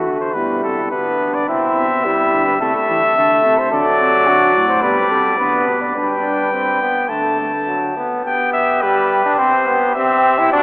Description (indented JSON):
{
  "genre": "classical, imitative canzona for brass ensemble",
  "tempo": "106 BPM",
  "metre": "4/4",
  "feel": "straight",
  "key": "G major from 3.7 s",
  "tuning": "A4 = 439 Hz",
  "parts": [
    { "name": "clear trumpet", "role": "melody", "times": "0.0-10.6 s", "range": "F#4 to A5", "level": "-17 LUFS", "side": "left 1 dB", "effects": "none" },
    { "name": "warm flugelhorn", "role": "second line", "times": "0.0-10.6 s", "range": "D4 to D5", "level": "-20 LUFS", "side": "equal", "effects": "none" },
    { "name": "brilliant trombone", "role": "accompaniment", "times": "0.0-10.6 s", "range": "F#3 to E4", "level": "-18 LUFS", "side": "equal", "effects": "none" },
    { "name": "mellow tuba", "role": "bass", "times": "0.0-7.9 s", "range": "G2 to E3", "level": "-28 LUFS", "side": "equal", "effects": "none" }
  ],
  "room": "wet cathedral reverb, RT60 5.5 s",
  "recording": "telephone sound",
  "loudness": "-13 LUFS",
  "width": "side -24 dB against mid",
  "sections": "0.0-8.3 A section; 8.3-10.6 B section",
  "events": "none",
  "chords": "0.4 G/B; 2.6 Am/C; 3.7 D; 4.8 G/B; 6.0 Dsus4/G; 7.1 D; 8.3 G/B; 9.4 C",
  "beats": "0.35 0.92 | 1.48 2.05 2.61 3.17 | 3.72 4.28 4.84 5.39 | 5.96 6.53 7.10 7.68 | 8.26 8.83 9.39 9.96 | 10.53"
}